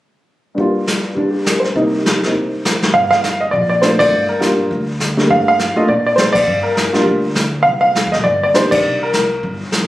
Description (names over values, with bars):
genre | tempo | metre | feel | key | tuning
jazz piano trio | 204 BPM | 4/4 | swing 60% on 8ths | G minor | A4 = 440 Hz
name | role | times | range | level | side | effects
warm baby grand piano | melody | 0.5-9.7 s | G2 to F5 | -14 LUFS | equal | none
vintage brush drum kit | drums | 0.6-9.9 s | brushed snare drum, hi-hat, kick drum, ride cymbal, snare drum | -19 LUFS | left 1 dB | none
upright bass | bass | 2.9-9.9 s | G1 to Bb2 | -24 LUFS | equal | none
room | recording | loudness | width
moderate studio reverb, RT60 0.5 s | recorded on a phone in the room, studio reverb, compression | -13 LUFS | side -15 dB against mid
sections
0.6-2.9 A section; 2.9-9.9 B section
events
band accent 4.0, 6.3, 8.7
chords
0.6 Gm7; 1.8 Cm7; 2.9 Gm7; 7.7 Cm7